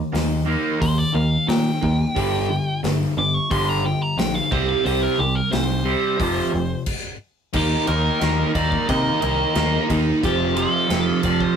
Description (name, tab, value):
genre	hard rock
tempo	89 BPM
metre	4/4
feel	straight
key	unclear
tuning	A4 = 440 Hz
part	nasal lead guitar with a parked wah	melody	0.0-11.6 s	G4 to D6	-25 LUFS	left 1 dB	overdrive
part	overdriven semi-hollow guitar	riff	0.0-11.6 s	F2 to Eb4	-22 LUFS	right 4 dB	phaser
part	sludgy distorted guitar	riff	0.0-11.6 s	F2 to Eb4	-27 LUFS	left 6 dB	overdrive
part	picked electric bass	bass	0.1-11.4 s	F1 to C3	-24 LUFS	left 1 dB	none
part	gated 80s drum kit	drums	0.1-11.6 s	crash cymbal, hi-hat, kick drum, ride cymbal, snare drum	-28 LUFS	left 1 dB	none
part	octave-fuzz lead guitar	second line	7.6-11.6 s	C4 to Bb4	-31 LUFS	right 4 dB	distortion
room	moderate studio reverb, RT60 0.7 s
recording	rough rehearsal-room recording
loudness	-18 LUFS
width	side -7 dB against mid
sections	0.0-7.5 A section; 7.5-11.6 B section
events	lead electric guitar solo 0.0-7.5; stop 6.9-7.5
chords	0.0 Eb; 2.2 G5; 4.5 C5; 6.2 F5; 7.5 Eb5; 10.2 F